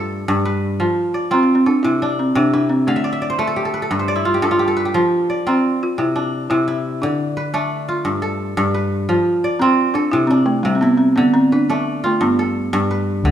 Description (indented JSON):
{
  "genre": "west african traditional, West African string and xylophone music",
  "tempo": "116 BPM (dotted quarters)",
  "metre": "12/8",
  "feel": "straight",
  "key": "F lydian",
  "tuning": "A4 = 441 Hz",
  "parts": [
    { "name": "kora", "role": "arpeggios", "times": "0.0-13.3 s", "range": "G2 to F5", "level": "-18 LUFS", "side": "equal", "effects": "none" },
    { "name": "balafon", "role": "melody", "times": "1.3-12.9 s", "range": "G3 to F4", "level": "-16 LUFS", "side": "equal", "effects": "none" },
    { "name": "overdriven fingered electric bass", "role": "bass", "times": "13.2-13.3 s", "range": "D2", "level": "-14 LUFS", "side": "equal", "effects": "none" }
  ],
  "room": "moderate recital hall reverb, RT60 1.6 s",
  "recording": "minimal, uncompressed stereo recording",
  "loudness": "-15 LUFS",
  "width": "side -10 dB against mid",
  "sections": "0.0-13.2 A section",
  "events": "kora fill 2.9-4.9",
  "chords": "0.0 G; 0.8 F; 1.8 C; 2.9 D5; 3.9 N.C.; 4.9 F5; 6.0 C; 7.0 Dm; 8.1 G; 9.1 F; 10.1 C; 11.2 Dm; 12.2 G"
}